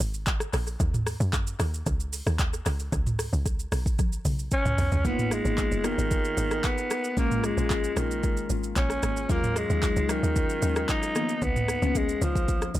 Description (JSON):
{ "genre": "amapiano", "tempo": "113 BPM", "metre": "4/4", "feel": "straight", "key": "G# dorian", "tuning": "A4 = 440 Hz", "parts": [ { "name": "tight log drum bass", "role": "bass", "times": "0.0-12.8 s", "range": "E#1 to F#2", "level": "-29 LUFS", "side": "equal", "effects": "none" }, { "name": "afro-pop drum kit", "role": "drums", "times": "0.0-12.8 s", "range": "handclaps, hi-hat, kick drum, rim click, shaker, toms", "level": "-28 LUFS", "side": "equal", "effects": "analog delay" }, { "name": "growling alto saxophone", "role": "melody", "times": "4.5-12.8 s", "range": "D#3 to D#4", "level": "-28 LUFS", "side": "equal", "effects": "analog delay" }, { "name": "glassy digital keys", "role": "accompaniment", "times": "5.0-12.8 s", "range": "D#3 to A#4", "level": "-31 LUFS", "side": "left 3 dB", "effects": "chorus" } ], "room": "little or no reverb", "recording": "echo-heavy mix", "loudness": "-24 LUFS", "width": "side -14 dB against mid", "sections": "0.0-5.0 A section; 5.0-12.8 B section", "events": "drop 0.0-5.0; drum fill 4.0-5.0", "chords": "0.0 G#sus2; 0.8 D#m7; 2.7 Bsus2; 5.0 G#m69; 7.2 A#m7; 9.3 D#m11; 11.2 C#13" }